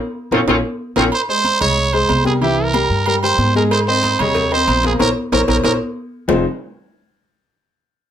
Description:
latin, salsa; 186 BPM; 4/4; straight; F minor; A4 = 440 Hz
bright horn section; melody; 0.3-1.0 s; C4 to F4; -19 LUFS; equal
warm upright piano; accompaniment; 0.3-6.4 s; C3 to Ab5; -20 LUFS; left 3 dB
upright bass; bass; 0.3-6.4 s; F1 to Ab2; -21 LUFS; equal
congas; percussion; 0.3-6.4 s; -24 LUFS; left 2 dB
cowbell and bongos; percussion; 0.3-1.0, 3.7-6.4 s; -26 LUFS; left 2 dB
timbales and agogo bells; percussion; 0.3-6.4 s; -24 LUFS; right 6 dB
growling trumpet; melody; 1.0-5.7 s; G4 to Db5; -17 LUFS; right 3 dB
moderate studio ambience, RT60 0.5 s; -14 LUFS; side -9 dB against mid
0.0-1.1 A section; 1.1-6.3 B section; 6.3-7.6 C section
band accent 0.0-1.1, 5.0-6.3; drum fill 0.2-1.1, 5.0-6.3
0.0 Bbmadd9; 1.1 Abmaj7; 2.4 C7; 3.7 Ab; 5.0 Bbmadd9; 6.3 Fm7
0.16 0.48 0.80 | 1.13 1.45 1.77 2.10 | 2.42 2.74 3.07 3.39 | 3.71 4.04 4.36 4.68 | 5.00 5.33 5.65 5.97 | 6.29

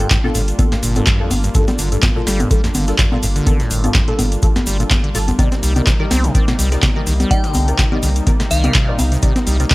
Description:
acid house; 125 BPM; 4/4; swing 55% on 16ths; G minor; A4 = 438 Hz
warm analog pad; sustained chords; 0.0-9.7 s; C3 to F4; -26 LUFS; equal; chorus, sidechain pumping
acid bass, saw; riff; 0.0-9.7 s; F2 to C4; -22 LUFS; equal; tube saturation, sidechain pumping, analog delay
filtered dub chord stab; stabs; 0.0-9.7 s; Bb3 to D5; -26 LUFS; left 1 dB; phaser, ensemble chorus, analog delay
warm sub bass; bass; 0.0-9.6 s; G1 to C2; -18 LUFS; equal; sidechain pumping
booming analog drum machine; drums; 0.0-9.7 s; congas, handclaps, hi-hat, snare drum; -20 LUFS; equal
egg shaker; percussion; 0.0-9.7 s; -29 LUFS; equal
breakbeat sampler-style drum kit; drums; 0.1-9.7 s; hi-hat, snare drum; -31 LUFS; equal
electronic kick drum; drums; 0.1-9.7 s; -17 LUFS; equal
glassy synth bell; melody; 7.3-9.2 s; F5 to G5; -26 LUFS; left 2 dB; chorus, phaser, tape echo
digital ambience; dry, gritty hardware recording; -13 LUFS; side -20 dB against mid
0.0-9.7 A section
0.0 Gm7; 5.4 Cm7
0.11 0.59 1.07 | 1.55 2.03 2.51 2.99 | 3.47 3.95 4.43 4.91 | 5.39 5.87 6.35 6.83 | 7.31 7.79 8.27 8.75 | 9.23 9.71

